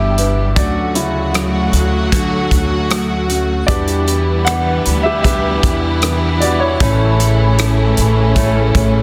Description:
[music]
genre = pop ballad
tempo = 77 BPM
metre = 4/4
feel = straight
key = D major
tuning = A4 = 440 Hz
[part]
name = warm grand piano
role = accompaniment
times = 0.0-9.0 s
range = C#3 to F#5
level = -22 LUFS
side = equal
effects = none
[part]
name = rich studio string section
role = sustained chords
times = 0.0-9.0 s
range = A2 to G4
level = -22 LUFS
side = equal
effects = none
[part]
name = picked steel-string acoustic guitar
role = arpeggios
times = 0.0-9.0 s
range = A2 to B4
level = -23 LUFS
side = equal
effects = none
[part]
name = upright bass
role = bass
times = 0.0-9.0 s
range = G1 to E2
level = -19 LUFS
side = equal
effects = none
[part]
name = natural country drum kit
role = drums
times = 0.2-8.9 s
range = hi-hat, kick drum, rim click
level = -20 LUFS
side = equal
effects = soft clipping on snare
[sound]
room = light reverb, studio ambience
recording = dense, heavily limited modern master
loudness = -15 LUFS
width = mono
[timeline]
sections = 0.0-9.0 A section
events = grand piano solo 0.0-9.0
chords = 0.0 G6; 0.6 Dmaj7; 3.7 Em7; 6.8 A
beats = | 0.57 1.34 2.12 2.90 | 3.68 4.46 5.24 6.02 | 6.80 7.58 8.36

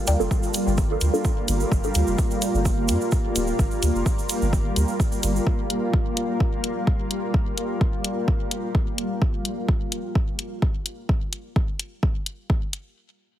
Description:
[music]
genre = dub techno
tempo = 128 BPM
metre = 4/4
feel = straight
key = G minor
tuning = A4 = 440 Hz
[part]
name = granular cloud pad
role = sustained chords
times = 0.0-9.2 s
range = G3 to F4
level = -26 LUFS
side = equal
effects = built-in reverb, sidechain pumping
[part]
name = soft dub sub bass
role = bass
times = 0.1-5.4 s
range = D1 to G2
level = -23 LUFS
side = equal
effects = sidechain pumping
[part]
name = electronic hi-hat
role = drums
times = 0.1-12.8 s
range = none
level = -27 LUFS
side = left 2 dB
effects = none
[part]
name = egg shaker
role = percussion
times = 0.1-5.4 s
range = none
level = -33 LUFS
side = right 5 dB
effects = none
[part]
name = filtered dub chord stab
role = stabs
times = 0.2-1.9 s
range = Bb3 to A4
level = -29 LUFS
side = right 2 dB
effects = chorus, phaser, sidechain pumping, dub echo
[part]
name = electronic kick drum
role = drums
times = 0.3-12.6 s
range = none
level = -22 LUFS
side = equal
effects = none
[sound]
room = light reverb, digital ambience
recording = heavily compressed radio sound, multiband compression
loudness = -21 LUFS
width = side -12 dB against mid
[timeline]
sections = 0.0-13.0 A section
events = filter sweep on synth stab 0.0-1.7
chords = 0.0 Gm7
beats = 0.31 0.78 1.25 | 1.72 2.19 2.65 3.12 | 3.59 4.06 4.53 5.00 | 5.47 5.93 6.40 6.87 | 7.34 7.81 8.28 8.75 | 9.22 9.69 10.15 10.62 | 11.09 11.56 12.03 12.50

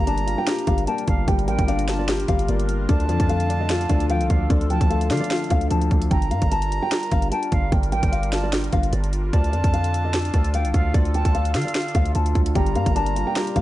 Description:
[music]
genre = hip hop, trap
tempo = 149 BPM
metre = 4/4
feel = half-time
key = G minor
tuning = A4 = 440 Hz
[part]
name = nylon-string guitar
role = melody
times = 0.0-13.6 s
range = D5 to A5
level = -28 LUFS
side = left 2 dB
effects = low-pass filter
[part]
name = reedy silver concert flute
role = second line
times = 0.0-13.6 s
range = F5 to Bb5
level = -30 LUFS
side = right 3 dB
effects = tape echo
[part]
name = dark grand piano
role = accompaniment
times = 0.0-6.1, 12.6-13.6 s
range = D3 to G4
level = -26 LUFS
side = left 4 dB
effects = low-pass filter
[part]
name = sweeping resonant pad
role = sustained chords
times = 0.0-13.6 s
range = D3 to Bb4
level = -31 LUFS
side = right 1 dB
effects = chorus, phaser
[part]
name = hard-hitting 808-style bass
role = bass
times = 0.0-13.6 s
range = G1 to D3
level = -23 LUFS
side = equal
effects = none
[part]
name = trap drum kit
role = drums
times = 0.1-13.6 s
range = finger snaps, hi-hat, kick drum, snare drum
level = -22 LUFS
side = equal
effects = overdrive
[sound]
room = studio reverb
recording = dark, warm production, nothing above 10.9 kHz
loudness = -19 LUFS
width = side -15 dB against mid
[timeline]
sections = 0.0-6.1 A section; 6.1-13.6 A section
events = none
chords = 0.0 Gm7; 2.9 Dm; 6.1 Gm7; 9.3 Dm; 12.6 Gm7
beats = 0.07 0.47 0.88 | 1.28 1.68 2.08 2.49 | 2.89 3.29 3.69 4.10 | 4.50 4.90 5.31 5.71 | 6.11 6.51 6.92 7.32 | 7.72 8.12 8.53 8.93 | 9.33 9.74 10.14 10.54 | 10.94 11.35 11.75 12.15 | 12.55 12.96 13.36

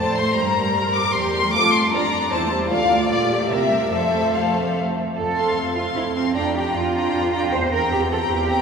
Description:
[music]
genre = quick classical-period movement for string orchestra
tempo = 153 BPM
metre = 3/4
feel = rubato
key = F major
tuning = A4 = 441 Hz
[part]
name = warm chamber violin section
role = melody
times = 0.0-8.6 s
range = D5 to D6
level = -22 LUFS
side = left 3 dB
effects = none
[part]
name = rich symphonic violin section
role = second line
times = 0.0-8.6 s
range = A4 to G5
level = -27 LUFS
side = left 2 dB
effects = none
[part]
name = warm symphonic viola section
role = accompaniment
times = 0.0-8.6 s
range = G3 to C5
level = -25 LUFS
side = right 2 dB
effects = none
[part]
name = rich symphonic cello section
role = bass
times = 0.0-8.6 s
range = D2 to C5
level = -24 LUFS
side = right 3 dB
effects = none
[part]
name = clear symphonic double bass section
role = bass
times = 5.2-8.6 s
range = E2 to F2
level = -27 LUFS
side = right 3 dB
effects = none
[sound]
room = wet cathedral reverb, RT60 5.9 s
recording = recorded in a church or concert hall, faint mains hum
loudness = -18 LUFS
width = side -6 dB against mid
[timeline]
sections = 0.0-5.2 A section; 5.2-8.6 A section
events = none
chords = 0.4 C7/G; 1.5 F; 2.7 Dm; 3.1 Bb; 3.5 C7; 3.9 F; 6.3 Gm7/F; 7.5 C7/E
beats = 0.00 | 0.38 0.76 1.15 | 1.54 1.93 2.32 | 2.71 3.10 3.51 | 3.92 4.34 4.75 | 5.16 5.56 5.96 | 6.35 6.75 7.14 | 7.53 7.92 8.31

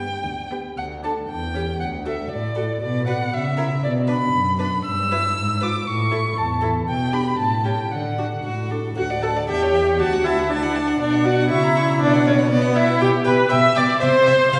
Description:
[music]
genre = quick classical-period movement for string quartet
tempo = 118 BPM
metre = 2/4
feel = rubato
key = D major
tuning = A4 = 444 Hz
[part]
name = warm violin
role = melody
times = 0.0-14.6 s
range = B4 to E6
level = -27 LUFS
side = equal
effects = none
[part]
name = clear violin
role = second line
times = 0.0-14.6 s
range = F#4 to C#6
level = -32 LUFS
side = equal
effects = none
[part]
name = rich viola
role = accompaniment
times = 0.0-14.6 s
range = B3 to E5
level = -23 LUFS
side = equal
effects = none
[part]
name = warm cello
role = bass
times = 0.0-14.6 s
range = D2 to D3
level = -26 LUFS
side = equal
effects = none
[sound]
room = wet recital hall reverb, RT60 1.9 s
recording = recorded in a church or concert hall, nothing above 10.7 kHz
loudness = -20 LUFS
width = mono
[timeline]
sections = 0.8-9.0 A section; 9.0-14.6 A section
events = none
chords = 0.0 G; 0.8 D5; 1.3 C#dim/E; 1.8 D; 2.8 Bm; 3.3 A#dim/C# (rootless); 3.8 Bm; 4.9 Em/G; 5.4 G#dim7(no3); 5.9 A; 6.9 G/B; 7.4 A7; 7.9 D; 9.5 C#dim/E; 10.0 D; 11.0 Bm; 11.5 A#dim/C#; 12.0 Bm; 13.0 G/B; 14.0 N.C.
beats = 0.24 | 0.78 1.29 | 1.80 2.31 | 2.81 3.33 | 3.83 4.33 | 4.86 5.37 | 5.87 6.36 | 6.87 7.38 | 7.91 8.45 | 8.97 9.48 | 9.99 10.50 | 11.00 11.51 | 12.01 12.51 | 13.01 13.52 | 14.02 14.52

